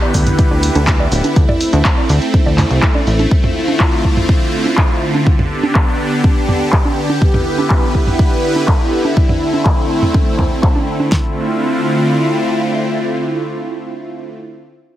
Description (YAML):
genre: progressive house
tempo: 123 BPM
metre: 4/4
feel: straight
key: D dorian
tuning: A4 = 440 Hz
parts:
  - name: supersaw pad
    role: sustained chords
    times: 0.0-14.3 s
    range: D3 to B4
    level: -16 LUFS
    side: equal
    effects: phaser, sidechain pumping
  - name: electronic bongos, toms and congas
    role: percussion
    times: 0.0-11.1 s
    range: none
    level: -20 LUFS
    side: right 2 dB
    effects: sidechain pumping on perc, sidechain pumping on toms
  - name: plucky analog bass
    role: bass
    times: 0.1-3.3 s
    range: D1 to D2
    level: -14 LUFS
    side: equal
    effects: sidechain pumping
  - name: house drum kit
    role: drums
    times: 0.1-11.1 s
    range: cabasa, handclaps, hi-hat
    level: -21 LUFS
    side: equal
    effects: overdrive, low-pass filter on snare, low-pass filter on hats, low-pass filter on perc, low-pass filter on room
  - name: pop drum kit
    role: drums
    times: 0.1-11.2 s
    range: kick drum, snare drum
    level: -14 LUFS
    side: equal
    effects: none
room: light reverb, digital ambience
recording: heavily compressed radio sound, multiband compression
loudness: -12 LUFS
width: side -13 dB against mid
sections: 0.0-11.1 A section; 11.1-15.0 B section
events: filter sweep on drum 0.0-11.1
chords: 0.0 Em7/D; 1.4 Am/D; 3.3 Dm7; 5.3 G/D; 7.2 Em7/D; 9.2 Am/D; 11.1 Dm7